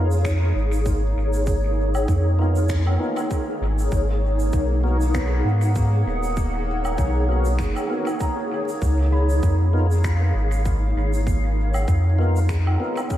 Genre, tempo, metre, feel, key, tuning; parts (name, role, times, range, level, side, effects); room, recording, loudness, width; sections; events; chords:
ambient dub; 98 BPM; 4/4; swing 57% on 16ths; Db mixolydian; A4 = 441 Hz
granular cloud pad; sustained chords; 0.0-13.2 s; Eb4 to Gb5; -26 LUFS; equal; built-in reverb, ensemble chorus
felt-muted upright piano; arpeggios; 0.0-13.2 s; Cb4 to Cb6; -36 LUFS; right 1 dB; tape echo
tonewheel organ; stabs; 0.0-13.0 s; Cb4 to Bb4; -32 LUFS; left 2 dB; overdrive, chorus vibrato, slow rotary speaker, dub echo
warm sub bass; bass; 0.0-12.8 s; Eb1 to Ab2; -20 LUFS; equal
bubbling stepped-filter texture; texture; 0.0-13.2 s; Bb3; -35 LUFS; right 2 dB; chorus, built-in reverb
shaker, finger snaps and woodblock; drums; 0.1-13.2 s; -35 LUFS; equal; dub echo
electronic kick drum; drums; 0.2-13.2 s; -25 LUFS; equal
light reverb; vinyl crackle; -19 LUFS; side -13 dB against mid
0.0-13.2 A section
0.0 Db13; 3.9 Abm9; 8.8 Db13